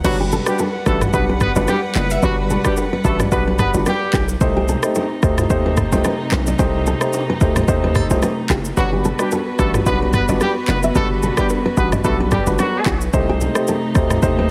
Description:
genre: afrobeats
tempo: 110 BPM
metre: 4/4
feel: swing 55% on 16ths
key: G major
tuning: A4 = 440 Hz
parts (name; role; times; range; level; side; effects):
- clear horn section; second line; 0.0-4.3, 8.8-13.0 s; F#3 to B4; -26 LUFS; equal; none
- dark baby grand piano; accompaniment; 0.0-14.5 s; G3 to C5; -24 LUFS; equal; none
- warm chamber string section; sustained chords; 0.0-14.5 s; C3 to F#5; -28 LUFS; equal; none
- hard-hitting 808-style bass; bass; 0.0-14.5 s; F#1 to Eb2; -23 LUFS; equal; none
- afro-pop drum kit; drums; 0.0-14.4 s; crash cymbal, handclaps, kick drum, rim click, shaker, toms; -24 LUFS; equal; none
- congas and bongos; percussion; 0.0-14.4 s; none; -30 LUFS; equal; none
- nylon-string guitar; riff; 0.2-14.5 s; G4 to E5; -26 LUFS; equal; delay
room: light reverb, studio ambience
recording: heavily compressed radio sound, multiband compression, faint mains hum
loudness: -18 LUFS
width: mono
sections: 0.0-14.5 A section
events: none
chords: 0.0 Gmaj7; 4.4 Cm6; 8.8 Gmaj7; 13.1 Cm6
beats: | 0.04 0.59 1.14 1.68 | 2.23 2.77 3.32 3.86 | 4.41 4.95 5.50 6.04 | 6.59 7.14 7.68 8.23 | 8.77 9.32 9.86 10.41 | 10.95 11.50 12.04 12.59 | 13.14 13.68 14.23

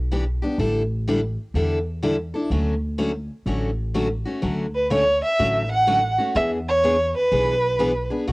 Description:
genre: acoustic string swing (jazz manouche)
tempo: 125 BPM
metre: 4/4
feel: swing 65% on 8ths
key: D major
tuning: A4 = 440 Hz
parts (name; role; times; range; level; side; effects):
- upright bass; bass; 0.0-8.3 s; A1 to E2; -26 LUFS; equal; none
- picked steel-string acoustic guitar; accompaniment; 0.1-8.3 s; B2 to A4; -24 LUFS; left 1 dB; cassette tape
- warm violin; melody; 4.8-8.1 s; B4 to F#5; -19 LUFS; right 1 dB; none
room: moderate booth ambience, RT60 0.3 s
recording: home recording on cassette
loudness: -20 LUFS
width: side -24 dB against mid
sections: 0.0-4.4 A section; 4.4-8.3 A section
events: none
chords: 0.0 Em7; 0.6 A7sus4; 2.5 Dmaj7; 6.4 E7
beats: 0.11 | 0.59 1.07 1.55 2.03 | 2.51 2.99 3.47 3.95 | 4.43 4.91 5.39 5.87 | 6.36 6.83 7.32 7.80 | 8.28

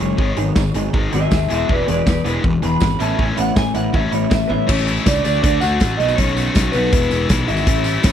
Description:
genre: indie rock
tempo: 160 BPM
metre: 4/4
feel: straight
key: E major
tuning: A4 = 437 Hz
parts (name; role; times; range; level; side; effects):
- electric guitar through a small old amp; melody; 0.0-8.1 s; G#4 to B5; -22 LUFS; equal; lush chorus, slapback echo
- electric guitar through a small old amp; riff; 0.0-4.7 s; E3 to G#4; -26 LUFS; right 15 dB; analog chorus, slapback echo
- overdriven electric guitar; riff; 0.0-8.1 s; E2 to F#4; -21 LUFS; left 5 dB; none
- fuzz picked electric bass; bass; 0.0-8.1 s; E1 to D#2; -21 LUFS; right 1 dB; overdrive
- big rock drum kit; drums; 0.2-8.1 s; crash cymbal, hi-hat, kick drum, snare drum; -20 LUFS; equal; none
- tambourine; percussion; 0.6-8.1 s; none; -36 LUFS; right 29 dB; none
- mellow tine electric piano; second line; 4.5-8.1 s; B3 to F#4; -28 LUFS; right 3 dB; slow stereo tremolo
room: little or no reverb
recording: dry, close 1970s-style studio recording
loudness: -15 LUFS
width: side -9 dB against mid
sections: 0.0-4.7 A section; 4.7-8.1 B section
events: clean electric guitar solo 0.0-4.7; drum fill 4.5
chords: 0.2 G#m7; 1.5 E; 3.0 Aadd9; 4.7 A; 5.2 D; 6.0 B7; 6.9 E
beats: | 0.18 0.56 0.94 1.31 | 1.69 2.06 2.44 2.81 | 3.18 3.56 3.93 4.31 | 4.68 5.05 5.43 5.80 | 6.17 6.55 6.92 7.29 | 7.67 8.04

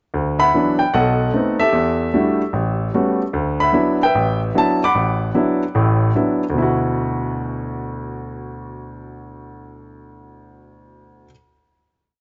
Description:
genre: solo jazz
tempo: 149 BPM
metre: 4/4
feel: swing 64% on 8ths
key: D major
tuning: A4 = 440 Hz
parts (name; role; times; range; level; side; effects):
- warm baby grand piano; solo; 0.1-11.3 s; A1 to D6; -19 LUFS; equal; none
room: light reverb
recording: nothing above 7.8 kHz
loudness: -18 LUFS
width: mono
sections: 0.1-6.6 A section; 6.6-9.8 final chord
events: none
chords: 0.1 D69; 0.9 B7b9; 1.7 Em11; 2.5 A13; 3.3 D69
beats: | 0.13 0.53 0.93 1.33 | 1.73 2.13 2.54 2.94 | 3.34 3.74 4.14 4.54 | 4.94 5.34 5.75 6.15 | 6.55 6.96 7.36 7.76 | 8.16 8.57 8.97 9.37

